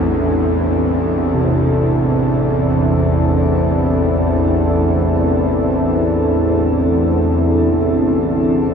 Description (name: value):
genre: dark ambient drone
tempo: free time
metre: none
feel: none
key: A minor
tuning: A4 = 440 Hz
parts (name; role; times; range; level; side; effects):
- dark analog pad; sustained chords; 0.0-8.7 s; C4 to A4; -16 LUFS; equal; chorus, shimmer reverb
- bowed-like drone; drone; 0.0-8.7 s; A1 to E2; -17 LUFS; equal; built-in reverb
- gamelan-type bronze metallophone; arpeggios; 1.3-6.8 s; C3; -22 LUFS; right 1 dB; tape echo
room: wet cathedral reverb, RT60 4.7 s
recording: dark, warm production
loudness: -13 LUFS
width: side -6 dB against mid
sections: 0.0-8.7 A section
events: none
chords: 0.0 A5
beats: free time